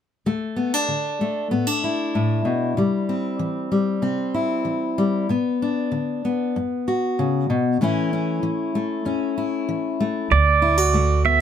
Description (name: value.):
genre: folk.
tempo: 96 BPM.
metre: 4/4.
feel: straight.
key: D major.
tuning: A4 = 440 Hz.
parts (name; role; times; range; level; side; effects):
fingerpicked steel-string acoustic guitar; accompaniment; 0.3-11.4 s; D2 to F#4; -21 LUFS; left 2 dB; none.
pedal steel guitar; melody; 10.3-11.4 s; D5 to E5; -18 LUFS; right 6 dB; none.
upright bass; bass; 10.3-11.4 s; D2; -19 LUFS; right 2 dB; none.
room: light reverb.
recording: none.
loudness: -20 LUFS.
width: side -9 dB against mid.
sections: 0.2-10.3 A section; 10.3-11.4 B section.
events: none.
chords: 0.2 D5; 2.8 C; 5.3 Bm; 7.8 A; 10.3 D.